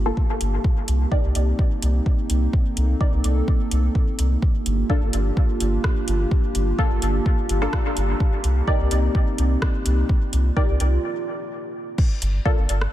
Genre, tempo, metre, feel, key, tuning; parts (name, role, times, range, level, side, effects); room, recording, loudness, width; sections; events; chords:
dub techno; 127 BPM; 4/4; straight; A4 = 440 Hz
dark analog pad; sustained chords; 0.0-12.0 s; Bb3 to A4; -28 LUFS; right 1 dB; chorus, sidechain pumping
soft dub sub bass; bass; 0.0-12.9 s; G1 to C2; -20 LUFS; equal; tube saturation, sidechain pumping
filtered dub chord stab; stabs; 0.1-12.6 s; Bb3 to D5; -29 LUFS; left 1 dB; chorus, phaser, sidechain pumping, dub echo
electronic kick drum; drums; 0.2-12.6 s; -20 LUFS; equal
deep house drum kit; drums; 0.4-12.9 s; crash cymbal, hi-hat, rim click; -32 LUFS; equal
light reverb, digital ambience; -19 LUFS; side -13 dB against mid
0.0-12.0 A section
filter sweep on synth stab 0.0-12.0; break 11.0-12.0
0.0 Gm7; 0.6 Cm7; 4.4 Gm7; 8.2 Cm7; 12.0 Gm7